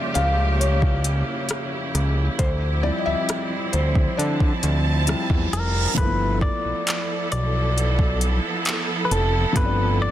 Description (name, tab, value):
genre	contemporary R&B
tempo	67 BPM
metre	4/4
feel	straight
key	D minor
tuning	A4 = 440 Hz
part	felt-muted upright piano	accompaniment	0.0-10.1 s	C#3 to F5	-27 LUFS	left 2 dB	none
part	clear studio string section	sustained chords	0.0-10.1 s	C#3 to A5	-27 LUFS	right 3 dB	none
part	fat analog bass	bass	0.2-10.1 s	F1 to D3	-22 LUFS	equal	none
part	smooth R&B drum kit	drums	0.2-9.8 s	handclaps, hi-hat, kick drum, rim click	-23 LUFS	equal	overdrive
part	reverse cymbal	sound effects	5.2-6.0 s	none	-31 LUFS	right 6 dB	none
part	clean electric guitar	melody	5.5-10.1 s	A4 to D5	-26 LUFS	left 1 dB	tape echo
room	little or no reverb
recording	dense, heavily limited modern master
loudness	-19 LUFS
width	side -12 dB against mid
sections	0.0-6.0 A section; 6.0-10.1 B section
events	felt piano solo 0.0-6.0; reverse cymbal 5.2-6.0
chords	0.0 A7b9b13 (rootless); 2.4 Dm11; 6.0 G13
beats	0.60 1.50 | 2.39 3.29 4.18 5.08 | 5.97 6.87 7.76 8.66 | 9.56